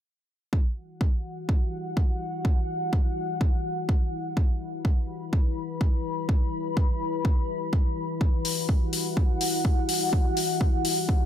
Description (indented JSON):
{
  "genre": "bass house",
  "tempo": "125 BPM",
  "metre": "4/4",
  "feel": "swing 55% on 16ths",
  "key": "E minor",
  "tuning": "A4 = 437 Hz",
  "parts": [
    { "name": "deep dark ambient pad", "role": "sustained chords", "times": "1.2-11.3 s", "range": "E4 to B5", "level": "-30 LUFS", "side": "left 2 dB", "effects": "chorus, built-in reverb, sidechain pumping" },
    { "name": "electronic kick drum", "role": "drums", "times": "0.5-11.2 s", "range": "none", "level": "-23 LUFS", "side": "equal", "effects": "overdrive" },
    { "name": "electronic hi-hat", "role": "drums", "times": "8.4-11.0 s", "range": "none", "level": "-29 LUFS", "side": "left 4 dB", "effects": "overdrive" }
  ],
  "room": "little or no reverb",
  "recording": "none",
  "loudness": "-24 LUFS",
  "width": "side -10 dB against mid",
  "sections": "0.5-11.3 A section",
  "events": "none",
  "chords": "0.5 Emadd9",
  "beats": "| 0.53 1.01 1.49 1.97 | 2.45 2.93 3.41 3.89 | 4.37 4.85 5.33 5.81 | 6.29 6.77 7.25 7.73 | 8.21 8.69 9.17 9.65 | 10.13 10.61 11.09"
}